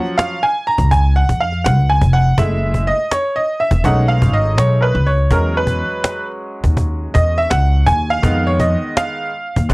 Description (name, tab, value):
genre	hip hop, jazz-hop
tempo	82 BPM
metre	4/4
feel	swing 64% on 16ths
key	unclear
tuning	A4 = 439 Hz
part	bright upright piano	accompaniment	0.0-9.7 s	D3 to Bb5	-17 LUFS	right 1 dB	none
part	cajon	drums	0.1-9.7 s	none	-19 LUFS	equal	none
part	upright bass	bass	0.8-9.7 s	Fb1 to F2	-15 LUFS	equal	none
room	little or no reverb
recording	dry, gritty hardware recording, cassette tape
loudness	-13 LUFS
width	side -24 dB against mid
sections	0.0-9.7 A section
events	upright piano solo 0.0-9.7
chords	0.0 Ebm9 (rootless); 2.4 Gbm9; 3.8 B13; 5.3 E69; 8.2 Fm7b5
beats	0.19 0.92 1.65 | 2.38 3.11 3.84 4.58 | 5.31 6.04 6.77 7.50 | 8.23 8.97 9.70